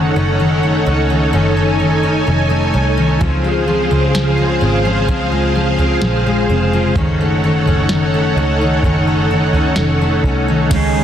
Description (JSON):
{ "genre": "dream pop", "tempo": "64 BPM", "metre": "4/4", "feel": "straight", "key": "unclear", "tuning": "A4 = 441 Hz", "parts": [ { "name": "string machine, violas", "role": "sustained chords", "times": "0.0-11.0 s", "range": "Db3 to Db6", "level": "-17 LUFS", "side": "right 1 dB", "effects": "ensemble chorus" }, { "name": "fingerpicked twelve-string acoustic guitar", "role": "arpeggios", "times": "0.0-11.0 s", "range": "Eb3 to Db4", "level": "-17 LUFS", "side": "left 2 dB", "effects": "lush chorus, tape echo" }, { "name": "vintage muted picked electric bass", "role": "bass", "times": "0.0-11.0 s", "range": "F1 to Db2", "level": "-18 LUFS", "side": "right 1 dB", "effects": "none" }, { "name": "soft vintage rhythm box", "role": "drums", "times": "3.2-10.9 s", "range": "crash cymbal, kick drum, snare drum, tambourine, toms", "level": "-20 LUFS", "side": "right 1 dB", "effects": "overdrive" }, { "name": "mellow electric guitar", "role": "accompaniment", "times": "10.7-11.0 s", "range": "Db3 to Ab4", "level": "-16 LUFS", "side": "right 8 dB", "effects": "harmonic tremolo, wide subtle chorus" } ], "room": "moderate plate reverb, RT60 3.2 s", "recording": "dense, heavily limited modern master", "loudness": "-12 LUFS", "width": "side -9 dB against mid", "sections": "0.0-10.7 A section", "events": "none", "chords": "0.0 Gbm6; 3.2 Dbmaj7; 7.0 Gbm6" }